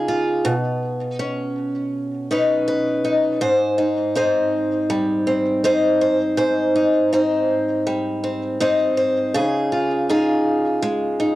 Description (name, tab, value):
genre	folktronica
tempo	81 BPM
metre	4/4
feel	swing 56% on 16ths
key	Ab major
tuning	A4 = 441 Hz
part	picked old ladder-braced acoustic guitar	solo	0.0-11.4 s	Ab2 to C5	-18 LUFS	equal	cassette tape
room	wet studio reverb, RT60 0.6 s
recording	home recording on cassette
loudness	-18 LUFS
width	side -16 dB against mid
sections	0.0-3.4 A section; 3.4-11.4 B section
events	none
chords	0.5 Badd9; 3.4 Abmaj7; 9.3 Dbadd9